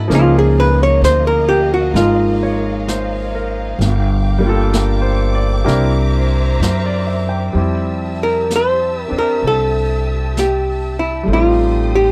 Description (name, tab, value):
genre	jazz ballad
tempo	65 BPM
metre	4/4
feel	swing 66% on 8ths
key	F major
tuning	A4 = 437 Hz
part	archtop guitar, miked and amplified	melody	0.0-12.1 s	E4 to Db5	-18 LUFS	equal	none
part	clear concert grand piano	accompaniment	0.0-12.1 s	F3 to G5	-23 LUFS	equal	none
part	warm symphonic string section	sustained chords	0.0-12.1 s	G4 to E6	-30 LUFS	equal	none
part	upright bass	bass	0.0-12.1 s	G1 to Gb2	-19 LUFS	equal	none
part	jazz brush drum kit	drums	0.1-12.1 s	brushed snare drum, hi-hat, snare drum	-26 LUFS	equal	none
room	little or no reverb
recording	dry, close 1970s-style studio recording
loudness	-16 LUFS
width	mono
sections	0.0-7.6 A section; 7.6-12.1 B section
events	hollow-body jazz guitar solo 0.0-7.6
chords	0.1 Db69; 3.8 Gm7; 5.7 C9; 7.6 Fmaj9; 11.3 Am7b5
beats	| 0.11 1.03 1.95 2.88 | 3.81 4.74 5.67 6.61 | 7.56 8.49 9.43 10.36 | 11.29